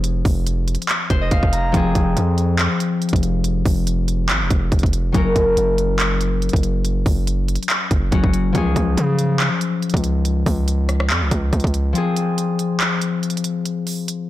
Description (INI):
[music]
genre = hip hop, trap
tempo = 141 BPM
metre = 4/4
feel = half-time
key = F phrygian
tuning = A4 = 439 Hz
[part]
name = concert harp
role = accompaniment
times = 0.0-14.3 s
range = F3 to Bb5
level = -21 LUFS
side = left 3 dB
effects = none
[part]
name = distorted 808-style bass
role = bass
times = 0.0-11.9 s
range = F1 to Db3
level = -20 LUFS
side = right 1 dB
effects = distortion
[part]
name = trap drum kit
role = drums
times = 0.0-14.2 s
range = handclaps, hi-hat, kick drum, rim click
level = -20 LUFS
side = right 1 dB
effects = none
[sound]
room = light reverb, small room ambience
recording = blown-out, overdriven recording, overdrive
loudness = -16 LUFS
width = side -14 dB against mid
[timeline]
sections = 0.0-14.3 A section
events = harp fill 0.9-1.7; break 12.0-14.3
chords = 0.0 Fm; 5.1 Gb; 8.5 Db; 12.0 Fm